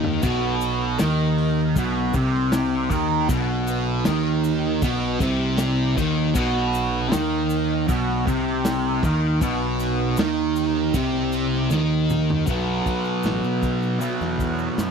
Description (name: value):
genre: psychedelic rock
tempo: 78 BPM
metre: 4/4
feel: straight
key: unclear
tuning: A4 = 438 Hz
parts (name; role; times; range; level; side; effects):
- thick fuzz guitar; riff; 0.0-14.9 s; B2 to B3; -21 LUFS; right 1 dB; distortion, phaser
- fuzz picked electric bass; bass; 0.0-14.9 s; A1 to B2; -26 LUFS; equal; overdrive
- vintage drum kit; drums; 0.0-14.9 s; crash cymbal, hi-hat, kick drum, snare drum, toms; -27 LUFS; equal; none
- tube shaker; percussion; 0.2-14.9 s; none; -39 LUFS; left 8 dB; none
room: little or no reverb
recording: dry, close 1970s-style studio recording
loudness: -20 LUFS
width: side -6 dB against mid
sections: 0.0-12.5 A section; 12.5-14.9 B section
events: drum fill 0.0, 11.7-12.5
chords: 0.0 B; 12.5 Bsus4